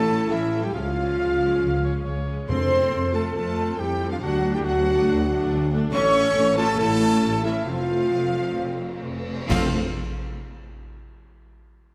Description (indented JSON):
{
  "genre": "cinematic, heroic adventure film score",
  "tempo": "130-140 BPM",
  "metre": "4/4",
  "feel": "straight",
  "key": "F major",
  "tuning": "A4 = 445 Hz",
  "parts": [
    { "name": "warm symphonic violin section", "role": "melody", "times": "0.0-9.8 s", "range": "E5 to C#6", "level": "-38 LUFS", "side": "equal", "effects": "none" },
    { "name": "mellow clarinet", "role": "second line", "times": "0.0-9.7 s", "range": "C4 to A4", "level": "-35 LUFS", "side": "equal", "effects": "none" },
    { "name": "mellow large flute ensemble", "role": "second line", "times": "0.0-9.8 s", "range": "E5 to C#6", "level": "-37 LUFS", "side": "equal", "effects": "none" },
    { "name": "rich studio violin section", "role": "second line", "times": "0.0-9.8 s", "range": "E5 to C#6", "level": "-39 LUFS", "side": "equal", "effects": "none" },
    { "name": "warm symphonic viola section", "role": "accompaniment", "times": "0.0-9.8 s", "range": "Ab3 to D4", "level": "-34 LUFS", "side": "equal", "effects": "none" },
    { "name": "mellow French horn section", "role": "sustained chords", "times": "0.0-9.7 s", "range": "E4 to C#5", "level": "-27 LUFS", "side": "equal", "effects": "none" },
    { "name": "warm trumpet", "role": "stabs", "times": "0.0-9.7 s", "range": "C4 to C#5", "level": "-32 LUFS", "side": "equal", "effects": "none" },
    { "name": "rich symphonic cello section", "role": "bass", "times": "0.0-9.8 s", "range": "E3 to C#4", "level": "-32 LUFS", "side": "equal", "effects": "none" },
    { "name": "warm symphonic double bass section", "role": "bass", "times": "0.0-9.8 s", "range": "F1 to F2", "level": "-30 LUFS", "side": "equal", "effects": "none" },
    { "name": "clear oboe", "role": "second line", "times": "1.2-2.5 s", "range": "Db5 to F5", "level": "-37 LUFS", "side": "equal", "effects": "none" },
    { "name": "timpani", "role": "percussion", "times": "2.5-3.1, 9.5-9.7 s", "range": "F2", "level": "-33 LUFS", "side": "equal", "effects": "none" },
    { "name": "cymbal swell, clash cymbals and concert bass drum", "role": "percussion", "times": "5.9-10.4 s", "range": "none", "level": "-35 LUFS", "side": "equal", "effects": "none" }
  ],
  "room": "wet scoring stage reverb, RT60 2.1 s",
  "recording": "none",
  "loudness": "-23 LUFS",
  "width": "mono",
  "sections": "0.0-9.5 A section; 9.5-11.3 B section",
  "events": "slowing down 5.1-9.5; band accent 9.5-10.0",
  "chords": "0.0 A; 0.8 Db; 2.5 F; 4.2 D; 5.9 A; 7.7 F"
}